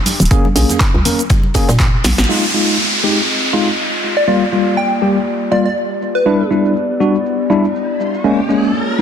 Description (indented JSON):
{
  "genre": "deep house",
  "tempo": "121 BPM",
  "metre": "4/4",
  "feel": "swing 56% on 16ths",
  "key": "F dorian",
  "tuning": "A4 = 444 Hz",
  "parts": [
    { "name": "open jazz drum kit", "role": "drums", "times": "0.1-2.2 s", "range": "hi-hat, snare drum", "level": "-28 LUFS", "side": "left 3 dB", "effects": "sidechain pumping on hats, high-pass filter on hats, high-pass filter on snare, high-pass filter on room" },
    { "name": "punchy analog drum machine", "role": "drums", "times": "0.1-9.0 s", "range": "handclaps, hi-hat, shaker, snare drum", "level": "-19 LUFS", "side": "right 1 dB", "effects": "low-pass filter on hats, low-pass filter on perc, low-pass filter on snare" },
    { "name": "congas", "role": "percussion", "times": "0.1-2.2 s", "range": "none", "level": "-24 LUFS", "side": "equal", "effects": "sidechain pumping on perc" },
    { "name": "hollow knocking FM bass", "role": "bass", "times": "0.2-2.3 s", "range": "D1 to Bb2", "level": "-14 LUFS", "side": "equal", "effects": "sidechain pumping" },
    { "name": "tine electric piano", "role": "stabs", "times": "0.3-9.0 s", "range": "G3 to Bb4", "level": "-16 LUFS", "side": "left 1 dB", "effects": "fast stereo tremolo, sidechain pumping, low-pass filter, digital delay" },
    { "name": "electronic kick drum", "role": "drums", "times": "0.3-1.9 s", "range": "none", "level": "-14 LUFS", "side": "equal", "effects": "none" },
    { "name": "warbly tape-like pad", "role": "sustained chords", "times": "2.8-9.0 s", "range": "Bb3 to Eb5", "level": "-21 LUFS", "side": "left 2 dB", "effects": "chorus, built-in reverb, sidechain pumping" },
    { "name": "downlifter and riser", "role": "sound effects", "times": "2.3-9.0 s", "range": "none", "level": "-20 LUFS", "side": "equal", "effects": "none" },
    { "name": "plucky unison lead", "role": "melody", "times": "4.2-6.5 s", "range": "B4 to G5", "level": "-18 LUFS", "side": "left 1 dB", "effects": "dub echo" }
  ],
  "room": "moderate lush hall reverb, RT60 1.9 s, small room ambience",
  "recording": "dense, heavily limited modern master",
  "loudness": "-12 LUFS",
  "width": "side -8 dB against mid",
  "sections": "0.0-2.3 A section; 2.3-9.0 B section",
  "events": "drum fill 2.0; band accent 2.2; filter sweep on tine electric piano 2.3-9.0; riser 7.3-9.0",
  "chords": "0.3 Bbm7; 2.3 Fm7; 4.0 Gm7; 6.0 Em7; 8.2 Bbm7"
}